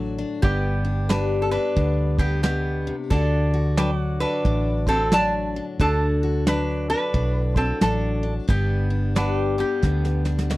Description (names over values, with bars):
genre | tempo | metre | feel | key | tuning
honky-tonk and classic country | 89 BPM | 4/4 | swing 62% on 8ths | G major | A4 = 440 Hz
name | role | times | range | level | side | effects
lap resonator guitar | melody | 0.0-10.6 s | B3 to A5 | -25 LUFS | right 1 dB | none
picked steel-string acoustic guitar | accompaniment | 0.0-10.6 s | G2 to A4 | -27 LUFS | left 4 dB | none
pedal steel guitar | sustained chords | 0.0-10.6 s | D5 to G5 | -34 LUFS | right 2 dB | wide subtle chorus
vintage muted fingered electric bass | bass | 0.0-10.6 s | G1 to D2 | -23 LUFS | equal | none
soft brush drum kit | drums | 0.4-10.6 s | hi-hat, kick drum, snare drum | -22 LUFS | right 1 dB | none
room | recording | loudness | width
little or no reverb | dry, close 1970s-style studio recording | -20 LUFS | side -18 dB against mid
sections
0.0-10.6 A section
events
drum fill 9.8-10.6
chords
0.4 G; 3.1 D; 8.5 G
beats
| 0.44 1.11 1.78 2.45 | 3.12 3.79 4.46 5.13 | 5.80 6.47 7.14 7.82 | 8.49 9.16 9.83 10.50